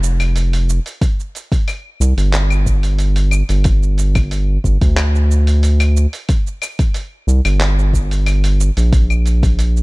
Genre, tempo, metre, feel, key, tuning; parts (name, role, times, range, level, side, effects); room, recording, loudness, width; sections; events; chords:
organic downtempo; 91 BPM; 4/4; straight; A4 = 439 Hz
round analog bass; bass; 0.0-9.8 s; F1 to D2; -13 LUFS; equal; sidechain pumping
dusty soul sampler-style drum kit; drums; 0.0-9.8 s; claves, handclaps, hi-hat, shaker; -24 LUFS; equal; overdrive
electronic kick drum; drums; 1.0-9.6 s; -15 LUFS; equal
digital ambience; dark, warm production; -13 LUFS; side -24 dB against mid
0.0-9.8 A section